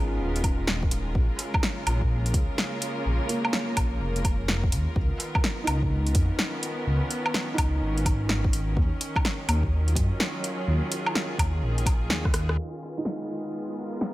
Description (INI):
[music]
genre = future garage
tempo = 126 BPM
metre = 4/4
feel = swing 64% on 16ths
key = G# dorian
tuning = A4 = 440 Hz
[part]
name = felt-muted upright piano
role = accompaniment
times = 0.0-8.8, 13.0-14.1 s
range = A#3 to G#4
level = -35 LUFS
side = right 1 dB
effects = sidechain pumping, low-pass filter, tape echo
[part]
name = bright symphonic string section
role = sustained chords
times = 0.0-14.1 s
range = C#3 to A#4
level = -33 LUFS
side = equal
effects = sidechain pumping
[part]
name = dark detuned saw bass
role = bass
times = 0.0-12.6 s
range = D#1 to F#2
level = -26 LUFS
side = equal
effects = tube saturation, sidechain pumping
[part]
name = deep house drum kit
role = drums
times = 0.4-14.1 s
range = hi-hat, rim click, snare drum, woodblock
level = -29 LUFS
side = equal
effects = small room reverb
[part]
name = electronic kick drum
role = drums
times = 0.4-12.3 s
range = none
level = -26 LUFS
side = equal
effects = small room reverb
[sound]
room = light reverb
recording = low-pass filter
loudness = -24 LUFS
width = side -17 dB against mid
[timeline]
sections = 0.0-12.6 A section; 12.6-14.1 B section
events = filter sweep on felt piano 0.0-12.6; drum fill 12.2-12.6; filter sweep 12.6-14.1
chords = 0.0 G#m69; 1.2 A#m7; 5.0 C#13; 8.8 D#m11; 12.6 G#m69